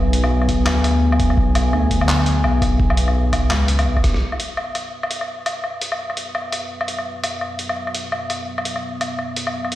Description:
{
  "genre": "half-time drum and bass",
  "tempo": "169 BPM",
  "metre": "4/4",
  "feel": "swing 59% on 16ths, half-time",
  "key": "B dorian",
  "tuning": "A4 = 440 Hz",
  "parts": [
    { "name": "dark analog pad", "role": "sustained chords", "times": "0.0-9.8 s", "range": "F#3 to G#5", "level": "-25 LUFS", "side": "left 1 dB", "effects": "chorus, sidechain pumping" },
    { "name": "dark detuned saw bass", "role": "bass", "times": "0.0-4.2 s", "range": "B1 to D2", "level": "-18 LUFS", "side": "equal", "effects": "tube saturation" },
    { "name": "boom bap sampler-style drum kit", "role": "drums", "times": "0.1-9.8 s", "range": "handclaps, hi-hat, rim click, woodblock", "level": "-23 LUFS", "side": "left 1 dB", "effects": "none" },
    { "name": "electronic kick drum", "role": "drums", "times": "0.5-4.1 s", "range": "none", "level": "-19 LUFS", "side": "equal", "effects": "none" }
  ],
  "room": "light reverb, digital ambience",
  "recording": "played on a big sound system in a bare room, large studio reverb",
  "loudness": "-18 LUFS",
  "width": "side -14 dB against mid",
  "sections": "0.0-4.2 A section; 4.2-9.8 B section",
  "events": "drum fill 4.0; filter sweep on analog synth pad 4.2-9.8",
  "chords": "0.0 B5",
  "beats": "0.31 0.67 1.02 | 1.38 1.73 2.09 2.44 | 2.80 3.15 3.51 3.86 | 4.22 4.57 4.93 5.28 | 5.64 5.99 6.35 6.70 | 7.06 7.41 7.77 8.12 | 8.48 8.83 9.19 9.54"
}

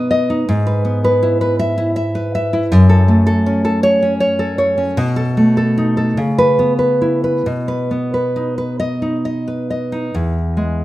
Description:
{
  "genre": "romantic piece for solo classical guitar",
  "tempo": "44-55 BPM (dotted quarters)",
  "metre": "6/8",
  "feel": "rubato",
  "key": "E major",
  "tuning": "A4 = 441 Hz",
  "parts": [
    { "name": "nylon-string guitar", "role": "solo", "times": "0.0-10.8 s", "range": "E2 to E5", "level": "-14 LUFS", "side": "equal", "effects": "none" }
  ],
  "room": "moderate recital hall reverb, RT60 1.6 s",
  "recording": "minimal, uncompressed stereo recording",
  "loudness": "-14 LUFS",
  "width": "side -16 dB against mid",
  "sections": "0.0-10.1 A section",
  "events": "none",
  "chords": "0.5 E/G#; 2.7 F#m; 5.0 B7; 6.2 C#m7; 7.5 B; 10.1 E",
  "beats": "| 0.48 1.59 | 2.71 3.84 | 4.98 6.20 | 7.47 8.80 | 10.14"
}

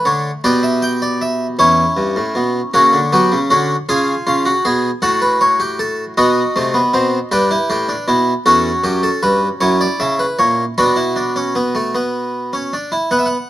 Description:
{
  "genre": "classical, baroque-style 4-part fugue for harpsichord",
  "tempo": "52 BPM (dotted quarters)",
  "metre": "6/8",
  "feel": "straight",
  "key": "B minor from 8.5 s",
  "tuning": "A4 = 439 Hz",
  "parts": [
    { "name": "harpsichord", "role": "solo", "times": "0.0-13.5 s", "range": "E2 to G#5", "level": "-13 LUFS", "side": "equal", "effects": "none" }
  ],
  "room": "light reverb",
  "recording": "close, detailed microphones",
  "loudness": "-13 LUFS",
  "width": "side -14 dB against mid",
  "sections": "0.0-13.1 A section",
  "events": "none",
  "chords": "0.4 G/B; 1.6 C#dim/E; 2.7 F#/C#; 3.9 C#7; 5.0 F#m/A; 6.2 B7; 7.3 Em/G; 8.5 C#dim/E; 9.6 F#7; 10.8 Bm",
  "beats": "0.44 | 1.59 2.74 | 3.89 5.03 | 6.18 7.32 | 8.46 9.62 | 10.78 11.95 | 13.12"
}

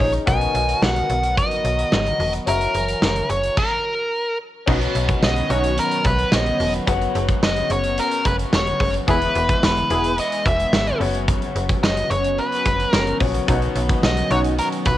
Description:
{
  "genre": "1980s-style pop",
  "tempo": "109 BPM",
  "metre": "4/4",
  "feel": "straight",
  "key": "B major",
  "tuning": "A4 = 439 Hz",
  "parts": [
    { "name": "nasal lead guitar with a parked wah", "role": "melody", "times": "0.0-15.0 s", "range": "A#4 to G#5", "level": "-22 LUFS", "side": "equal", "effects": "overdrive, cassette tape, plate reverb" },
    { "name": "bright concert grand piano", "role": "accompaniment", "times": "0.0-15.0 s", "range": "B2 to F#5", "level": "-28 LUFS", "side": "left 7 dB", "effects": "cassette tape, plate reverb" },
    { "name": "phased analog pad", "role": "sustained chords", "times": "0.0-15.0 s", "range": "D#3 to A#4", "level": "-29 LUFS", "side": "equal", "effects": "phaser, chorus, cassette tape, plate reverb" },
    { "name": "slap-like FM bass", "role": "bass", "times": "0.0-15.0 s", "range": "E1 to B1", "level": "-24 LUFS", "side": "equal", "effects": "none" },
    { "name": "big rock drum kit", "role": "drums", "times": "0.0-15.0 s", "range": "crash cymbal, hi-hat, kick drum, snare drum, tambourine", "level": "-22 LUFS", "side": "equal", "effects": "none" },
    { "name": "crunchy overdriven guitar", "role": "accompaniment", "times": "4.7-15.0 s", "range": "E2 to B3", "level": "-31 LUFS", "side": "equal", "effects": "wide subtle chorus, cassette tape, plate reverb" },
    { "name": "funky polysynth comp", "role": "stabs", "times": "4.7-5.7, 9.1-10.1, 13.5-14.5 s", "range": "B3 to G#4", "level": "-26 LUFS", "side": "equal", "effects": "chorus, cassette tape, tape echo, plate reverb" }
  ],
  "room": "light reverb",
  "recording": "home recording on cassette",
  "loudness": "-17 LUFS",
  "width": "side -14 dB against mid",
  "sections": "0.0-4.7 A section; 4.7-15.0 B section",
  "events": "stop 3.6-4.7",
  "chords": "0.3 Bmaj7; 2.5 F#7; 4.7 Badd9; 6.9 F#sus4; 9.1 E; 11.0 F#sus4; 13.5 Badd9",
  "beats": "| 0.27 0.82 1.37 1.92 | 2.47 3.02 3.57 4.12 | 4.67 5.22 5.78 6.33 | 6.88 7.43 7.98 8.53 | 9.08 9.63 10.18 10.73 | 11.28 11.83 12.38 12.93 | 13.48 14.03 14.58"
}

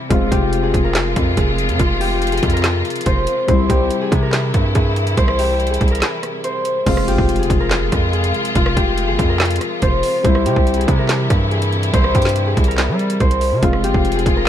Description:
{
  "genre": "hip hop, trap",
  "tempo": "142 BPM",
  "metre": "4/4",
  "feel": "half-time",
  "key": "F harmonic minor",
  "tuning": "A4 = 440 Hz",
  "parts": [
    { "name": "dark concert grand piano", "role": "accompaniment", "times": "0.0-14.5 s", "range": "G3 to F4", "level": "-26 LUFS", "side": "left 2 dB", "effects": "none" },
    { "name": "warm symphonic string section", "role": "sustained chords", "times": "0.0-14.5 s", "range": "C3 to F4", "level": "-23 LUFS", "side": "left 2 dB", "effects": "none" },
    { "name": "Celtic harp", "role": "melody", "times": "0.1-14.5 s", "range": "F4 to C5", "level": "-20 LUFS", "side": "left 2 dB", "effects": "ping-pong delay" },
    { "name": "distorted 808-style bass", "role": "bass", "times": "0.1-14.5 s", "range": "F1 to G3", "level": "-19 LUFS", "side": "right 1 dB", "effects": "distortion" },
    { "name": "trap drum kit", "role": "drums", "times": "0.1-14.5 s", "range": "crash cymbal, handclaps, hi-hat, kick drum, rim click, snare drum", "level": "-19 LUFS", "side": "right 1 dB", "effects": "none" },
    { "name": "impact", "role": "sound effects", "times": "6.9-8.6 s", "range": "none", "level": "-28 LUFS", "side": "right 4 dB", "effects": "none" }
  ],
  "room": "light reverb",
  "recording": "none",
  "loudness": "-14 LUFS",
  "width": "side -10 dB against mid",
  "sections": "0.0-6.9 A section; 6.9-14.5 B section",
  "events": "break 6.0-6.9; impact 6.9-8.6",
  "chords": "0.1 Fm; 3.5 C; 6.9 Fm; 10.2 C; 13.6 Fm",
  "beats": "| 0.10 0.53 0.95 1.37 | 1.79 2.22 2.64 3.06 | 3.48 3.91 4.33 4.75 | 5.17 5.60 6.02 6.44 | 6.87 7.29 7.71 8.13 | 8.55 8.98 9.40 9.82 | 10.24 10.67 11.09 11.51 | 11.94 12.36 12.78 13.20 | 13.62 14.05 14.47"
}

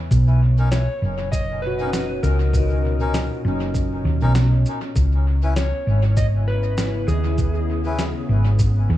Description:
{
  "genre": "ambient dub",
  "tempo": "99 BPM",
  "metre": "4/4",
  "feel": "swing 57% on 16ths",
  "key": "unclear",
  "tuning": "A4 = 439 Hz",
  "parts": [
    { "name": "warm analog pad", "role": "sustained chords", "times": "0.0-9.0 s", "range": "A#2 to C#5", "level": "-32 LUFS", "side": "left 3 dB", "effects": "chorus, vintage 12-bit sampler grit" },
    { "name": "handpan", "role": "arpeggios", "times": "0.0-6.4 s", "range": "C#4 to B4", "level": "-31 LUFS", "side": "left 1 dB", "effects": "dub echo" },
    { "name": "hollow-body short-scale fingered electric bass", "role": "bass", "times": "0.0-9.0 s", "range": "F#1 to E2", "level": "-18 LUFS", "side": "equal", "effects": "none" },
    { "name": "electronic cabasa and snare drum", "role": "drums", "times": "0.1-8.7 s", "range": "none", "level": "-31 LUFS", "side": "equal", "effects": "small room ambience, dub echo" },
    { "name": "electronic kick drum", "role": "drums", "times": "0.1-8.7 s", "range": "none", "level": "-22 LUFS", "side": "equal", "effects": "small room ambience" },
    { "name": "melodica", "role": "stabs", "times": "0.6-8.0 s", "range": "C#4 to B4", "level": "-32 LUFS", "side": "left 3 dB", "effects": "dub echo" },
    { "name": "electric slide guitar", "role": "melody", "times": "0.7-8.3 s", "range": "G#4 to D#5", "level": "-29 LUFS", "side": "equal", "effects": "dub echo" }
  ],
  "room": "digital ambience",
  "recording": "echo-heavy mix",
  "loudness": "-18 LUFS",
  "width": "side -14 dB against mid",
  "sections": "0.0-9.0 A section",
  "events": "none",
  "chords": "0.1 Bmaj9; 5.0 C#m7",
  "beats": "| 0.11 0.72 1.32 1.93 | 2.54 3.14 3.75 4.36 | 4.96 5.57 6.17 6.78 | 7.39 7.99 8.60"
}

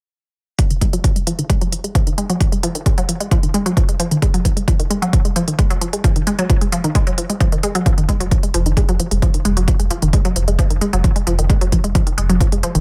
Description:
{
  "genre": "driving peak-time techno",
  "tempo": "132 BPM",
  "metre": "4/4",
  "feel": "straight",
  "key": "F phrygian",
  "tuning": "A4 = 439 Hz",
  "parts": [
    { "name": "unison pluck", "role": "riff", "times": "0.6-12.8 s", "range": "Eb3 to Ab3", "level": "-23 LUFS", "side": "equal", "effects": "tube saturation, sidechain pumping, delay" },
    { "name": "electronic hi-hat", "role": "drums", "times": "0.6-12.8 s", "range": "none", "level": "-27 LUFS", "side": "equal", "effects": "none" },
    { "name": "electronic kick drum", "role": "drums", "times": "0.6-12.5 s", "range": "none", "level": "-18 LUFS", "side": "equal", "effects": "none" },
    { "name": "saturated sub bass", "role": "bass", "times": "8.0-12.8 s", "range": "F1", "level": "-20 LUFS", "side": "equal", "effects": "sidechain pumping, low-pass filter" }
  ],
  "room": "digital ambience",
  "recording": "none",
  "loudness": "-17 LUFS",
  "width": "mono",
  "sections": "0.6-12.8 A section",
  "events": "filter sweep on synth arpeggio sound 0.6-12.8",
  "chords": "0.6 Fm",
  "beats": "| 0.59 1.04 1.50 1.95 | 2.40 2.86 3.31 3.77 | 4.22 4.68 5.13 5.59 | 6.04 6.50 6.95 7.41 | 7.86 8.31 8.77 9.22 | 9.68 10.13 10.59 11.04 | 11.50 11.95 12.40"
}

